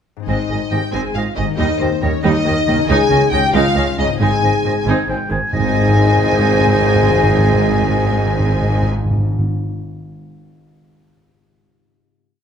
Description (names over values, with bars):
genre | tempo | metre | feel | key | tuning
cinematic, heroic adventure film score | 92 BPM (dotted quarters) | 6/8 | straight | Ab major | A4 = 439 Hz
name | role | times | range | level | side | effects
concert harp | arpeggios | 0.2-9.8 s | Ab2 to Eb5 | -24 LUFS | left 12 dB | none
rich symphonic violin section | melody | 0.3-8.9 s | C5 to Ab5 | -24 LUFS | left 1 dB | none
clear oboe | second line | 0.3-8.9 s | Eb5 to Ab5 | -25 LUFS | right 4 dB | none
dark clarinet | second line | 0.3-8.9 s | Bb4 to Db5 | -28 LUFS | left 3 dB | none
dark symphonic violin section | second line | 0.3-8.9 s | C5 to Ab5 | -25 LUFS | left 2 dB | none
hollow silver concert flute | second line | 0.3-8.9 s | G5 to Ab5 | -27 LUFS | left 4 dB | none
clear symphonic viola section | accompaniment | 0.3-8.9 s | C3 to Eb4 | -25 LUFS | right 2 dB | none
dark French horn section | sustained chords | 0.3-8.9 s | C4 to Ab4 | -22 LUFS | left 3 dB | none
clear tuba | bass | 0.3-8.9 s | Ab1 to Eb2 | -23 LUFS | right 5 dB | none
rich symphonic cello section | bass | 0.3-8.9 s | Db2 to Ab2 | -23 LUFS | right 2 dB | none
warm symphonic double bass section | bass | 0.3-8.9 s | Ab1 to Eb2 | -22 LUFS | right 2 dB | none
timpani | percussion | 4.2-9.5 s | Ab2 | -19 LUFS | equal | none
room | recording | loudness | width
moderate scoring stage reverb, RT60 1.4 s | close, detailed microphones | -13 LUFS | side -8 dB against mid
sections
0.3-5.5 theme; 5.5-8.1 final chord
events
none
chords
0.3 Ab; 1.6 Eb; 2.9 Dbsus2; 4.2 Ab